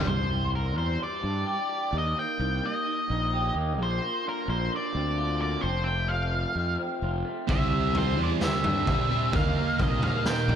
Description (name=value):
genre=quiet-loud alternative rock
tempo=130 BPM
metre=4/4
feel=straight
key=unclear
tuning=A4 = 440 Hz
part: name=thick fuzz guitar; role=riff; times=0.0-0.1, 7.5-10.6 s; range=C3 to Eb4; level=-31 LUFS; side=right 10 dB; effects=distortion, slapback echo
part: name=fuzz fingered electric bass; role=bass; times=0.0-10.6 s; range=F1 to G2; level=-29 LUFS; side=equal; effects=overdrive
part: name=octave-fuzz lead guitar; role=melody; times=0.1-10.6 s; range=Bb4 to G5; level=-30 LUFS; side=equal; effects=distortion, analog delay
part: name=electric guitar through a small old amp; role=arpeggios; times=0.1-10.6 s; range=F2 to G4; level=-34 LUFS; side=equal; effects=lush chorus, slapback echo
part: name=raw garage drum kit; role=drums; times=7.5-10.6 s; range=kick drum, snare drum, toms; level=-27 LUFS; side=equal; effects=none
room=moderate lush hall reverb, RT60 1.6 s, small room reverb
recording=big arena sound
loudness=-25 LUFS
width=side -8 dB against mid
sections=0.1-10.6 A section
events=half time 0.1-10.6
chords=0.1 Cadd9; 1.9 Eb; 3.8 Bbadd9; 5.6 F; 7.5 Cadd9; 9.3 Eb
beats=| 0.07 0.53 1.00 1.46 | 1.93 2.39 2.85 3.32 | 3.78 4.25 4.71 5.17 | 5.63 6.10 6.56 7.02 | 7.48 7.95 8.41 8.87 | 9.33 9.79 10.25